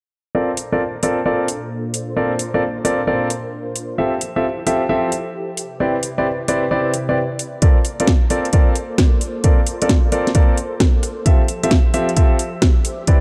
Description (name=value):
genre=UK garage, two-step garage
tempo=132 BPM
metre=4/4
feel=swing 66% on 16ths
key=Bb lydian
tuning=A4 = 440 Hz
part: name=soft string machine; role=sustained chords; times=0.6-13.2 s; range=Bb2 to E5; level=-31 LUFS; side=equal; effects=phaser, ensemble chorus, sidechain pumping
part: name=warm concert grand piano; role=stabs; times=0.3-13.2 s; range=C4 to E5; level=-22 LUFS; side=equal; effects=low-pass filter
part: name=house drum kit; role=drums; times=0.6-13.2 s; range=hi-hat, rim click, snare drum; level=-23 LUFS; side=equal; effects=studio reverb
part: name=electronic kick drum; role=drums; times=7.6-13.2 s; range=none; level=-16 LUFS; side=equal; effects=studio reverb
room=light reverb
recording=dark, warm production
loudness=-18 LUFS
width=mono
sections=0.3-13.2 A section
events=filter sweep on grand piano 0.3-13.2; filter sweep on string machine 0.3-13.2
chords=0.3 Bbmaj9; 4.0 Fmaj9; 5.6 Cmaj9; 7.6 Bbmaj9; 11.3 Fmaj9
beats=| 0.35 0.80 1.26 1.71 | 2.17 2.62 3.08 3.53 | 3.98 4.44 4.89 5.35 | 5.80 6.26 6.71 7.17 | 7.62 8.08 8.53 8.98 | 9.44 9.89 10.35 10.80 | 11.26 11.71 12.17 12.62 | 13.08